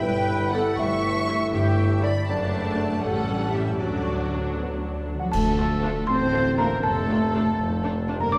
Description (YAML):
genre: cinematic, playful, whimsical film cue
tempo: 80 BPM (dotted quarters)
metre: 6/8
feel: straight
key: D major, D minor from 5.3 s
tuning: A4 = 439 Hz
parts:
  - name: rich studio violin section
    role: melody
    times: 0.0-8.2 s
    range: F4 to C#6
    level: -35 LUFS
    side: equal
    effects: none
  - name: xylophone with soft rubber mallets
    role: melody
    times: 0.0-8.4 s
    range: F#4 to D6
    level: -32 LUFS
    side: equal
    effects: none
  - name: mellow flute section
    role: second line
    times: 0.0-8.4 s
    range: F#4 to E5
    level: -35 LUFS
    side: equal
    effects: none
  - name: warm studio violin section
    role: second line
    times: 0.0-8.4 s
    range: F#4 to E5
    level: -35 LUFS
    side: equal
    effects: none
  - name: dark French horn section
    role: sustained chords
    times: 0.0-8.4 s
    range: F#3 to E4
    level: -32 LUFS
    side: equal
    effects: none
  - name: concert harp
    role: arpeggios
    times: 0.0-8.4 s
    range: F2 to A5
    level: -36 LUFS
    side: equal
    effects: none
  - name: dark studio cello section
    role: bass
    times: 0.0-8.4 s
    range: F#2 to D4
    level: -33 LUFS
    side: equal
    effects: none
  - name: dark studio double bass section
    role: bass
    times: 0.0-8.4 s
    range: F1 to D2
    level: -32 LUFS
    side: equal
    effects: none
  - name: warm tuba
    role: bass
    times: 0.0-8.4 s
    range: F1 to D2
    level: -34 LUFS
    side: equal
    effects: none
  - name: rich studio viola section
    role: accompaniment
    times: 0.5-8.2 s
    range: F#3 to E4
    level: -35 LUFS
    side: equal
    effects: none
  - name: clash cymbals and concert bass drum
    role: percussion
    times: 5.3-6.3 s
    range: none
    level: -35 LUFS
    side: equal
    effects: none
room: wet cathedral reverb, RT60 4.3 s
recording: recorded in a church or concert hall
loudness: -24 LUFS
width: mono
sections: 0.0-5.3 A section; 5.3-8.4 B section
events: band accent 5.3-5.8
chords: 0.0 Em/G; 0.8 A7/G; 2.3 D/F#; 3.0 A13; 3.8 D; 5.3 Dm; 6.8 Dm/F